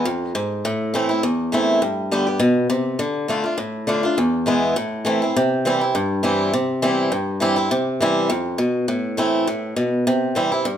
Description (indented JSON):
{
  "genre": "bluegrass",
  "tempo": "204 BPM",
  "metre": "4/4",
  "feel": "swing 54% on 8ths",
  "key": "unclear",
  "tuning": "A4 = 439 Hz",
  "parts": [
    { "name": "picked swing-style acoustic guitar", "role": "solo", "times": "0.0-10.8 s", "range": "E2 to G4", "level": "-18 LUFS", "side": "equal", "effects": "none" }
  ],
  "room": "moderate large studio reverb, RT60 0.9 s",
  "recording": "minimal, uncompressed stereo recording",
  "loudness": "-18 LUFS",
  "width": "side -9 dB against mid",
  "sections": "0.0-5.4 A section; 5.4-10.8 B section",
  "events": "none",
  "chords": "0.0 N.C.; 0.6 Am; 1.8 G; 3.0 Dm; 4.2 E; 4.8 Am; 5.4 C; 8.9 Am; 10.1 C"
}